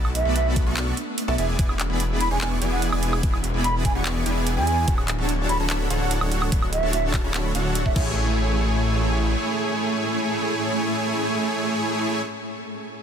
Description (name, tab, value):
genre	future bass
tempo	146 BPM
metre	4/4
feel	half-time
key	A major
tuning	A4 = 440 Hz
part	shimmering ambient pad	sustained chords	0.1-12.2 s	A2 to C#5	-33 LUFS	right 1 dB	chorus, built-in reverb, sidechain pumping
part	dense compressed supersaw	riff	0.0-12.2 s	A3 to C#6	-25 LUFS	right 1 dB	sidechain pumping, ping-pong delay
part	wide detuned saw bass	bass	0.0-9.4 s	D1 to E2	-24 LUFS	equal	chorus, sidechain pumping
part	trap drum kit	drums	0.0-8.0 s	crash cymbal, handclaps, hi-hat, woodblock	-30 LUFS	right 2 dB	none
part	mellow wooden flute	melody	0.2-8.0 s	E5 to B5	-29 LUFS	right 3 dB	sidechain pumping, digital delay
part	electronic kick drum	drums	0.6-8.0 s	none	-23 LUFS	equal	none
room	little or no reverb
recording	dense, heavily limited modern master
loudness	-20 LUFS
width	side -8 dB against mid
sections	0.0-8.2 A section; 8.2-11.5 B section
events	drop 0.0-8.2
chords	0.0 Bm7; 1.4 E7; 4.9 Dmaj7; 8.0 Amaj7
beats	0.36 0.77 1.18 | 1.59 2.00 2.41 2.82 | 3.23 3.64 4.05 4.47 | 4.88 5.29 5.70 6.11 | 6.52 6.93 7.34 7.75 | 8.16 8.58 8.99 9.40 | 9.81 10.22 10.63 11.04